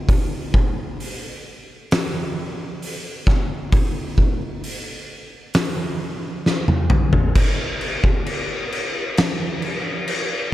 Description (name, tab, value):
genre	metal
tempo	66 BPM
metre	4/4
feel	straight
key	none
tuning	none
part	oversized low-tuned drum kit	drums	0.1-10.3 s	crash cymbal, hi-hat, kick drum, snare drum, toms	-19 LUFS	equal	none
room	little or no reverb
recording	dark, warm production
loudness	-19 LUFS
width	side -14 dB against mid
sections	0.0-7.3 A section; 7.3-10.5 B section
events	drum fill 6.4-7.3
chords	none